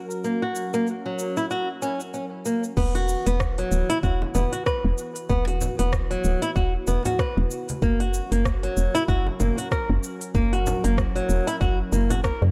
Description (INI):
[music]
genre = organic downtempo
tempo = 95 BPM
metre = 4/4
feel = swing 57% on 16ths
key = unclear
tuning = A4 = 437 Hz
[part]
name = warbly tape-like pad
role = sustained chords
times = 0.0-12.5 s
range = E3 to A#4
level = -38 LUFS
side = equal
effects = chorus, built-in reverb, phaser, sidechain pumping
[part]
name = organic electronic drum kit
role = drums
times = 0.1-12.4 s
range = crash cymbal, hi-hat, rim click, shaker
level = -36 LUFS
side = equal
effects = overdrive
[part]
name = flamenco guitar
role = arpeggios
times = 0.2-12.4 s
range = F#3 to B4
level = -28 LUFS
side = equal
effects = analog delay
[part]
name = woody FM bass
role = bass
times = 2.8-12.5 s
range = D1 to F#2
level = -26 LUFS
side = equal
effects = sidechain pumping
[part]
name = electronic kick drum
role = drums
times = 2.8-12.4 s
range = none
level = -28 LUFS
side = equal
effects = none
[part]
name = bongos and congas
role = percussion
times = 3.0-12.5 s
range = none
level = -35 LUFS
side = equal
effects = none
[sound]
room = little or no reverb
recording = dry, gritty hardware recording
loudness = -24 LUFS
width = mono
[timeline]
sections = 0.0-2.8 A section; 2.8-12.5 B section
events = filter sweep on nylon-string guitar 0.0-2.8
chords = 0.0 F#; 2.8 E5; 7.8 F#7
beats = | 0.24 0.88 1.51 2.14 | 2.77 3.40 4.03 4.66 | 5.30 5.93 6.56 7.19 | 7.82 8.45 9.09 9.72 | 10.35 10.98 11.61 12.24